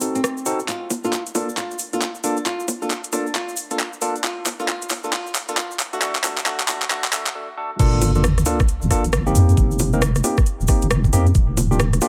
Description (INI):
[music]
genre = UK garage, two-step garage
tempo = 135 BPM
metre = 4/4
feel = swing 62% on 16ths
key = G minor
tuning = A4 = 444 Hz
[part]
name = barky tine electric piano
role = stabs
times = 0.0-12.1 s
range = A3 to Bb4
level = -28 LUFS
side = equal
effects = low-pass filter, dub echo
[part]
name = garage drum kit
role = drums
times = 0.0-12.1 s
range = bongos, crash cymbal, handclaps, hi-hat, rim click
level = -26 LUFS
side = equal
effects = none
[part]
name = cabasa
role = percussion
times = 0.0-12.1 s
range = none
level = -34 LUFS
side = equal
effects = none
[part]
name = flamenco guitar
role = melody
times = 0.2-7.3 s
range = C4 to F#4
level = -32 LUFS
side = equal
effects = dub echo
[part]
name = deep soft wobble bass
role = bass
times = 7.8-12.0 s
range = Eb1 to F2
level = -20 LUFS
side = equal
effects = chorus, sidechain pumping
[part]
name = electronic kick drum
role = drums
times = 7.8-11.5 s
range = none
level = -20 LUFS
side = equal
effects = none
[part]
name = sub drop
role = sound effects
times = 7.8-9.6 s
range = none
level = -27 LUFS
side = equal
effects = none
[sound]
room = light reverb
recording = high-pass filter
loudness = -21 LUFS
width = mono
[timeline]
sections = 0.0-7.8 A section; 7.8-12.1 B section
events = build-up 0.0-7.8; filter sweep on tine electric piano 0.0-7.8; filter sweep 0.0-7.8; drum fill 0.7-7.3; break 7.3-7.8; drop 7.8-12.1; impact 7.8-9.6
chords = 0.0 D7b9 (rootless); 0.7 Bbmaj7; 5.8 D; 7.8 Gm9; 9.3 F7sus4; 11.3 Ebmaj9